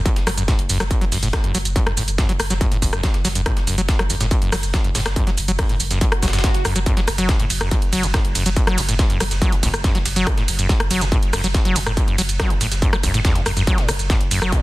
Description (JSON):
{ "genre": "driving peak-time techno", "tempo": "141 BPM", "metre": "4/4", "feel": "straight", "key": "F# minor", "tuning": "A4 = 440 Hz", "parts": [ { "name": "saturated sub bass", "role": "bass", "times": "0.0-14.5 s", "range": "F#1", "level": "-24 LUFS", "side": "equal", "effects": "overdrive, sidechain pumping, low-pass filter" }, { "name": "acid bass, saw", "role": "riff", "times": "0.1-14.6 s", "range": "E2 to F#3", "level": "-24 LUFS", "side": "equal", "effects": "sidechain pumping, tape echo" }, { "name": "breakbeat sampler-style drum kit", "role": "drums", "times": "0.1-14.6 s", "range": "hi-hat, snare drum", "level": "-31 LUFS", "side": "left 1 dB", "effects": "high-pass filter on hats, high-pass filter on snare, high-pass filter on room" }, { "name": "electronic kick drum", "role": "drums", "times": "0.1-14.6 s", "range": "none", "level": "-19 LUFS", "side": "equal", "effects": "distortion, overdrive" }, { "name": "techno drum kit", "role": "drums", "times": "0.1-14.6 s", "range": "hi-hat, ride cymbal, rim click, shaker", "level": "-24 LUFS", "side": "right 1 dB", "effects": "overdrive, sidechain pumping on hats, sidechain pumping on perc, sidechain pumping on cymbals" }, { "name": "swell", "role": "sound effects", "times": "6.1-6.9 s", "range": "none", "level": "-29 LUFS", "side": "right 2 dB", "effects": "none" } ], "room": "digital ambience", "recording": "dense, heavily limited modern master", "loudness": "-16 LUFS", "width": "side -18 dB against mid", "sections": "0.0-14.6 A section", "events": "swell 6.1-6.9", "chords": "none" }